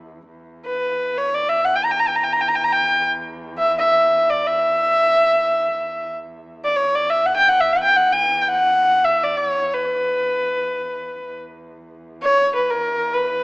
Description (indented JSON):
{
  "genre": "Turkish makam ensemble",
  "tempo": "free time",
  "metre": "none",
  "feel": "none",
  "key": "E makam nikriz",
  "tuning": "A4 = 441 Hz",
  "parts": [
    { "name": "dark cello", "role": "drone", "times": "0.0-13.4 s", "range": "E2", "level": "-38 LUFS", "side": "right 1 dB", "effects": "none" },
    { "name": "rich kamancheh", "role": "melody", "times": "0.7-13.4 s", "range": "A#4 to A#5", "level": "-16 LUFS", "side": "equal", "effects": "slapback echo" }
  ],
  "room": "light reverb, small room ambience",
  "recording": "rough home demo mix, small speaker sound",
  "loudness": "-16 LUFS",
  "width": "side -26 dB against mid",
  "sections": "0.3-13.4 A section",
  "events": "none",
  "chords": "none"
}